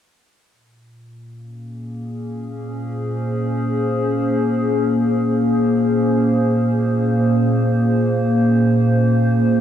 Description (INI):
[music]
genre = ambient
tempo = free time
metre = none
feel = none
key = Bb minor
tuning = A4 = 439 Hz
[part]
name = warbly tape-like pad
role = sustained chords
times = 1.6-9.6 s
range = Bb2 to C5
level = -16 LUFS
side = equal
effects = chorus, built-in reverb
[sound]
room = moderate huge ambient reverb, RT60 3.9 s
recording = dark, warm production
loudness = -16 LUFS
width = side -9 dB against mid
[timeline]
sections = 0.5-5.6 A section; 5.6-9.6 B section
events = fade-in on ambient pad 0.5-5.6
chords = 0.5 Bbm9